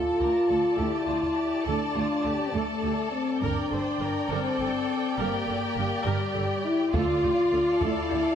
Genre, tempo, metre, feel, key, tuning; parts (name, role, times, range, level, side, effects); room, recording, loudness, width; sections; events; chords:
cinematic, epic orchestral film score; 68 BPM (dotted quarters); 6/8; straight; D minor; A4 = 440 Hz
warm symphonic violin section; melody; 0.0-8.3 s; F5 to A5; -36 LUFS; left 5 dB
rich symphonic violin section; second line; 0.0-8.3 s; F4 to C5; -35 LUFS; left 3 dB
warm symphonic viola section; accompaniment; 0.0-8.3 s; G4 to D5; -34 LUFS; right 3 dB
mellow French horn section; sustained chords; 0.0-8.3 s; G3 to F4; -26 LUFS; left 2 dB
warm symphonic cello section; bass; 0.2-8.2 s; D2 to G2; -34 LUFS; right 4 dB
warm symphonic double bass section; bass; 0.2-8.2 s; G1 to D2; -36 LUFS; right 4 dB
taiko ensemble; drums; 1.2-8.3 s; -34 LUFS; equal
timpani; percussion; 7.0-7.8 s; D3; -38 LUFS; equal
moderate scoring stage reverb, RT60 2.0 s; -24 LUFS; side -9 dB against mid
0.0-8.3 A section
0.0 Dm; 3.4 Gm; 6.9 Dm